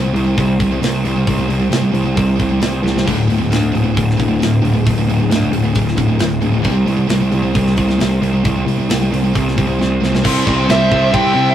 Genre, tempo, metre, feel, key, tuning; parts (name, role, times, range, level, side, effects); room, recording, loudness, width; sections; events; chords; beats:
heavy metal; 134 BPM; 4/4; straight; A4 = 441 Hz
scooped high-gain guitar; riff; 0.0-11.5 s; D2 to C4; -22 LUFS; right 2 dB; distortion
sludgy distorted guitar; riff; 0.0-11.5 s; D2 to C4; -18 LUFS; left 1 dB; overdrive
fuzz picked electric bass; bass; 0.0-11.5 s; D1 to D2; -17 LUFS; equal; overdrive
tight metal drum kit; drums; 0.2-11.2 s; crash cymbal, hi-hat, kick drum, snare drum; -20 LUFS; right 1 dB
high-gain distorted guitar; riff; 10.2-11.5 s; C3 to C4; -19 LUFS; equal; distortion
high-gain lead guitar; melody; 10.7-11.5 s; E5 to G5; -14 LUFS; right 1 dB; distortion
bluesy overdriven lead guitar; second line; 10.7-11.5 s; C5 to E5; -20 LUFS; right 2 dB; distortion, tape echo
moderate small room ambience, RT60 0.5 s; rough rehearsal-room recording, warm saturation; -13 LUFS; side -10 dB against mid
0.0-10.2 A section; 10.2-11.5 B section
drum fill 2.9, 9.8-10.2
0.0 C5; 3.1 D5; 6.7 C5
0.38 0.83 | 1.28 1.73 2.18 2.63 | 3.08 3.52 3.97 4.42 | 4.87 5.32 5.77 6.22 | 6.67 7.11 7.56 8.01 | 8.46 8.90 9.35 9.80 | 10.24 10.69 11.13